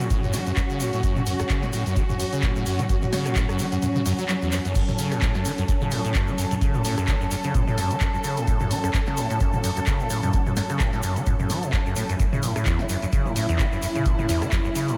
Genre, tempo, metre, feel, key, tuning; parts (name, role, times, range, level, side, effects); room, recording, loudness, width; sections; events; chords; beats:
acid house; 129 BPM; 4/4; swing 56% on 16ths; F# minor pentatonic; A4 = 443 Hz
muted studio string section; sustained chords; 0.0-15.0 s; F#3 to A4; -30 LUFS; equal; vintage 12-bit sampler grit, sidechain pumping
acid bass, saw; riff; 0.0-15.0 s; E2 to F#3; -29 LUFS; equal; lush chorus, delay
punchy analog drum machine; drums; 0.0-15.0 s; crash cymbal, handclaps, hi-hat, rim click, snare drum, toms; -32 LUFS; equal
egg shaker; percussion; 0.0-15.0 s; -41 LUFS; equal
electronic kick drum; drums; 0.1-14.6 s; -27 LUFS; equal
moderate lush hall reverb, RT60 1.7 s, digital ambience; dreamy mix soaked in reverb; -24 LUFS; mono
0.0-15.0 A section
kick drops out 3.8-4.8; drum fill 4.5
0.0 F#m
0.10 0.57 | 1.03 1.50 1.96 2.43 | 2.89 3.36 3.82 4.29 | 4.75 5.22 5.68 6.15 | 6.61 7.08 7.54 8.01 | 8.47 8.94 9.40 9.87 | 10.34 10.80 11.27 11.73 | 12.20 12.66 13.13 13.59 | 14.06 14.52